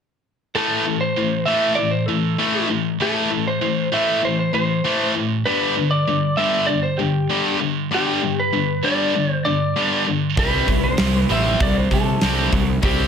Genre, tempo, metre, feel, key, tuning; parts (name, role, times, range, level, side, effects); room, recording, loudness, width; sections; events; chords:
hard rock; 98 BPM; 4/4; straight; A minor; A4 = 440 Hz
lightly driven lead guitar; melody; 0.6-13.1 s; G4 to E5; -22 LUFS; equal; slapback echo
overdriven electric guitar; riff; 0.6-13.1 s; G2 to C4; -22 LUFS; left 8 dB
scooped high-gain guitar; riff; 0.6-13.1 s; G2 to C4; -23 LUFS; right 11 dB; distortion
fuzz picked electric bass; bass; 10.4-13.1 s; A1 to C3; -22 LUFS; right 1 dB; overdrive
huge arena drum kit; drums; 10.4-13.0 s; hi-hat, kick drum, snare drum; -21 LUFS; right 1 dB
moderate large studio reverb, RT60 0.9 s; -17 LUFS; side -7 dB against mid
0.6-13.1 A section
0.6 Am; 5.5 G5; 10.4 C5